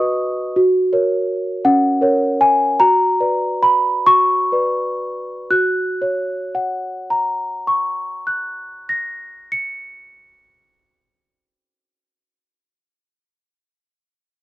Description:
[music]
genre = classical, lullaby for celesta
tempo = 40-57 BPM (dotted quarters)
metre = 6/8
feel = straight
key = F# major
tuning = A4 = 440 Hz
[part]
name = celesta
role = solo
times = 0.0-13.8 s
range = C#4 to C#7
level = -16 LUFS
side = equal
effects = none
[sound]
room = little or no reverb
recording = dry, close 1970s-style studio recording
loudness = -16 LUFS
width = side -16 dB against mid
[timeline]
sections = 0.0-5.5 A section; 5.5-11.5 B section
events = slowing down 0.0-5.5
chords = 0.0 B/F#; 0.6 F#; 2.8 Bm/F#; 5.5 F#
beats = | 0.56 1.64 | 2.79 4.07 | 5.51 7.01 | 8.52 10.03

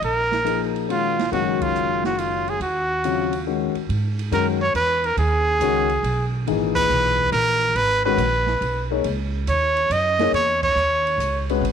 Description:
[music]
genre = modal jazz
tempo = 140 BPM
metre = 3/4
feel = swing 67% on 8ths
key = Eb dorian, G# minor from 3.9 s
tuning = A4 = 440 Hz
[part]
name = clear trumpet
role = melody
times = 0.0-11.5 s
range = F4 to D#5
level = -20 LUFS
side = right 2 dB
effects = none
[part]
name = upright bass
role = bass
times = 0.0-11.7 s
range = Gb1 to G#2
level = -26 LUFS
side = right 2 dB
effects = none
[part]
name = open jazz drum kit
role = drums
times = 0.0-11.7 s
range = crash cymbal, hi-hat, kick drum, ride cymbal, snare drum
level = -33 LUFS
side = right 9 dB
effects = none
[part]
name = warm concert grand piano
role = accompaniment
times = 0.4-11.6 s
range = A#2 to C#5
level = -24 LUFS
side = left 11 dB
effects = none
[sound]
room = light reverb, small room ambience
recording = 1960s-style stereo with parts hard left and right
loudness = -18 LUFS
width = side -8 dB against mid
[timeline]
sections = 0.0-3.9 A section; 3.9-11.7 B section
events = band accent 1.5, 6.7, 10.6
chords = 0.0 Ebm9; 3.9 G#m9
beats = | 0.02 0.45 0.88 | 1.31 1.74 2.17 | 2.60 3.03 3.46 | 3.89 4.32 4.75 | 5.18 5.61 6.04 | 6.47 6.90 7.33 | 7.76 8.19 8.62 | 9.05 9.48 9.91 | 10.34 10.77 11.20 | 11.63

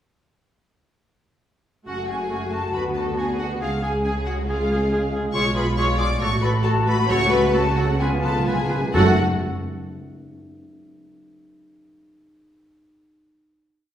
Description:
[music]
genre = classical, dramatic, fast romantic movement for symphony orchestra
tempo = 124-141 BPM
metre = 4/4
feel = rubato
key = F# minor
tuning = A4 = 440 Hz
[part]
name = clear symphonic violin section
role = melody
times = 1.9-9.2 s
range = E#5 to D6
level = -29 LUFS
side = left 2 dB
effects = none
[part]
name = mellow hollow flute section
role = second line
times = 1.9-9.2 s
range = E#5 to D6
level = -30 LUFS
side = left 3 dB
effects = none
[part]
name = rich symphonic violin section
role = second line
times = 1.9-9.2 s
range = E#4 to D5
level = -29 LUFS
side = left 4 dB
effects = none
[part]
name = warm clarinet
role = second line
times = 1.9-9.1 s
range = C#4 to F#4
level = -34 LUFS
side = left 1 dB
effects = none
[part]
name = warm oboe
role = second line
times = 1.9-9.1 s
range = F#4 to B4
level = -32 LUFS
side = right 1 dB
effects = none
[part]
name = rich symphonic viola section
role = accompaniment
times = 1.9-9.2 s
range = G#3 to G#4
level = -26 LUFS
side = right 2 dB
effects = none
[part]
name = warm French horn section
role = sustained chords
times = 1.9-9.1 s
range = G#3 to G#4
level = -28 LUFS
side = left 1 dB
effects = none
[part]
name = rich studio double bass section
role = bass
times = 1.9-9.2 s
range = F#1 to D2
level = -27 LUFS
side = right 1 dB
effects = none
[part]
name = warm symphonic cello section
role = bass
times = 1.9-9.2 s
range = F#2 to D3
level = -28 LUFS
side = right 2 dB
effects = none
[part]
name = timpani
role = percussion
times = 7.1-9.2 s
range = F#2 to C#3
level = -27 LUFS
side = equal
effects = none
[sound]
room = wet recital hall reverb, RT60 1.5 s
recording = recorded in a church or concert hall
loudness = -19 LUFS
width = side -10 dB against mid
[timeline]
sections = 1.9-8.9 A section; 8.9-10.8 final chord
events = slowing down 4.5-8.9; timpani fill 8.0-8.9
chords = 1.9 F#m; 2.8 Bm/D; 3.6 C#; 5.3 C#7b9/B; 6.2 F#m/A; 7.1 F#m/C#; 8.0 C#7; 8.9 F#m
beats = | 1.87 2.32 2.75 3.19 | 3.62 4.05 4.48 4.91 | 5.34 5.78 6.21 6.65 | 7.10 7.55 8.01 8.47 | 8.95

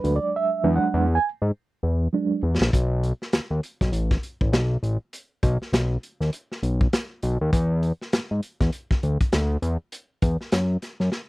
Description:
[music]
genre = funk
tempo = 100 BPM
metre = 4/4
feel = swing 60% on 16ths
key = unclear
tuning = A4 = 440 Hz
[part]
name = mellow reed electric piano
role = stabs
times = 0.0-2.4 s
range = F#3 to G#5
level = -22 LUFS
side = right 4 dB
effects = fast tremolo
[part]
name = fat analog bass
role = bass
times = 0.0-11.1 s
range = A1 to G#2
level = -22 LUFS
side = equal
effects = none
[part]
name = crunchy breakbeat drum kit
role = drums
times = 0.0-11.3 s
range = hi-hat, kick drum, snare drum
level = -23 LUFS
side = equal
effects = none
[sound]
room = little or no reverb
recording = dry, close 1970s-style studio recording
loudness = -22 LUFS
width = side -19 dB against mid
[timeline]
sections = 0.0-2.7 A section; 2.7-11.3 B section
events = reed electric piano solo 0.0-2.7; drum fill 0.3-2.7, 11.1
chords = 0.0 E9; 2.7 B7; 7.5 E7sus2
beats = | 0.34 0.94 1.54 2.13 | 2.73 3.33 3.93 4.53 | 5.13 5.73 6.33 6.93 | 7.53 8.13 8.73 9.33 | 9.92 10.52 11.12

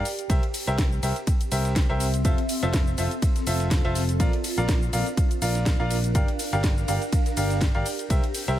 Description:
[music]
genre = piano house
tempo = 123 BPM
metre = 4/4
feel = swing 55% on 16ths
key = unclear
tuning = A4 = 441 Hz
[part]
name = bright upright piano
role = riff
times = 0.0-8.6 s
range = F4 to F5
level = -30 LUFS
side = equal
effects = sidechain pumping, ping-pong delay
[part]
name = granular cloud pad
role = texture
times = 0.0-8.6 s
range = C4 to F5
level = -32 LUFS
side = equal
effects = built-in reverb, sidechain pumping
[part]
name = breakbeat sampler-style drum kit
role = drums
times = 0.1-8.6 s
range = hi-hat, ride cymbal, snare drum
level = -42 LUFS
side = right 2 dB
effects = none
[part]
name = house drum kit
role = drums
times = 0.1-8.6 s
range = hi-hat, ride cymbal, shaker, snare drum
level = -32 LUFS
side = left 1 dB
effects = overdrive
[part]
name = fingered electric bass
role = bass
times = 0.3-8.6 s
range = F1 to C2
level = -26 LUFS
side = equal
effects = tube saturation, sidechain pumping
[part]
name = electronic kick drum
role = drums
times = 0.3-8.2 s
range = none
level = -23 LUFS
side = equal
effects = overdrive
[sound]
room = little or no reverb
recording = none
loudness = -22 LUFS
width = side -12 dB against mid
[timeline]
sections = 0.0-8.6 A section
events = none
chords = 0.1 C7; 2.2 Fmaj7; 4.2 Bb; 6.2 Gm7; 7.9 C7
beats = | 0.30 0.78 1.27 1.76 | 2.25 2.73 3.22 3.71 | 4.20 4.69 5.17 5.66 | 6.15 6.64 7.13 7.61 | 8.10 8.59

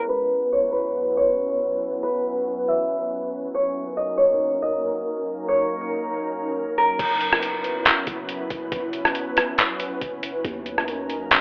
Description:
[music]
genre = hip hop, atmospheric cloud-rap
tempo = 139 BPM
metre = 4/4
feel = half-time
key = unclear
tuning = A4 = 440 Hz
[part]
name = Celtic harp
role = melody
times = 0.0-8.9 s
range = A#4 to E5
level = -25 LUFS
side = equal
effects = low-pass filter, cassette tape, tape echo
[part]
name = glassy FM pad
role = sustained chords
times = 0.0-11.4 s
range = F#3 to B4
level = -30 LUFS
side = equal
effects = ensemble chorus, built-in reverb, sidechain pumping, cassette tape
[part]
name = soft 808-style bass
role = bass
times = 7.0-11.4 s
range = F#1 to D#2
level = -42 LUFS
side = equal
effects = none
[part]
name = trip hop sampler-style drum kit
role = drums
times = 7.0-11.4 s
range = crash cymbal, handclaps, hi-hat, kick drum, rim click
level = -23 LUFS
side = equal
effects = cassette tape
[sound]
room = moderate spring reverb, RT60 1.2 s, digital ambience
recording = home recording on cassette, low-pass filter, telephone sound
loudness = -24 LUFS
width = mono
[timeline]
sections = 0.1-7.0 A section; 7.0-11.4 B section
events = filter sweep 0.1-7.0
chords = 0.1 F#7sus4; 3.5 D#m7; 7.0 F#7sus4; 10.4 D#m7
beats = | 0.09 0.52 0.95 1.38 | 1.81 2.25 2.68 3.11 | 3.54 3.97 4.40 4.83 | 5.27 5.70 6.13 6.56 | 6.99 7.42 7.86 8.29 | 8.72 9.15 9.58 10.02 | 10.45 10.88 11.31

